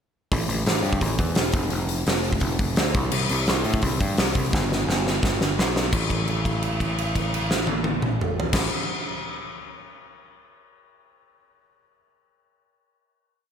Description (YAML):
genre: punk rock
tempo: 171 BPM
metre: 4/4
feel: straight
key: A minor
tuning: A4 = 440 Hz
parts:
  - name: overdriven picked electric bass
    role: bass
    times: 0.3-8.7 s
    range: E1 to A2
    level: -25 LUFS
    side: equal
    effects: none
  - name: big rock drum kit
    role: drums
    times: 0.3-8.6 s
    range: crash cymbal, hi-hat, kick drum, snare drum, toms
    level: -23 LUFS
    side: equal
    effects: none
room: little or no reverb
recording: none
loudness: -21 LUFS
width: side -8 dB against mid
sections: 0.3-5.9 verse; 5.9-8.7 final note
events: drum fill 4.5-5.9; held note 5.9-8.5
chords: none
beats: | 0.32 0.67 1.02 1.37 | 1.73 2.08 2.43 2.78 | 3.13 3.48 3.83 4.18 | 4.53 4.88 5.23 5.58 | 5.93 6.28 6.63 6.98 | 7.33 7.68 8.04 8.39